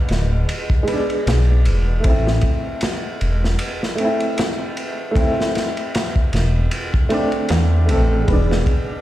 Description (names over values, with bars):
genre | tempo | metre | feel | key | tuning
trip hop | 77 BPM | 4/4 | swing 57% on 16ths | A harmonic minor | A4 = 440 Hz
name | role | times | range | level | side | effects
warm upright piano | accompaniment | 0.0-9.0 s | G#3 to A4 | -22 LUFS | equal | tremolo, tape echo
dark detuned saw bass | bass | 0.1-8.6 s | D1 to E2 | -17 LUFS | equal | none
crunchy breakbeat drum kit | drums | 0.1-8.9 s | kick drum, ride cymbal, snare drum | -21 LUFS | equal | none
room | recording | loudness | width
small room ambience | played on a big sound system in a bare room, stone room reverb | -16 LUFS | side -14 dB against mid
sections
0.0-9.0 A section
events
none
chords
0.0 E7; 2.0 Am; 8.3 E7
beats
0.48 1.26 | 2.04 2.82 3.60 4.38 | 5.16 5.94 6.72 7.50 | 8.27